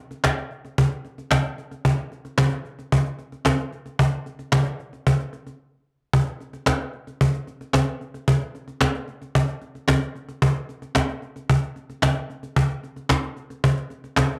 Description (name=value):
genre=pop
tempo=112 BPM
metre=4/4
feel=straight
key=none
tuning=none
part: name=cajon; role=drums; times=0.1-14.4 s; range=none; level=-23 LUFS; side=equal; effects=none
room=moderate digital room reverb, RT60 1.0 s, small room ambience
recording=dark, warm production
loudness=-24 LUFS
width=mono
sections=0.0-6.1 A section; 6.1-14.4 B section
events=break 5.6-6.1; drop 6.1-14.4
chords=none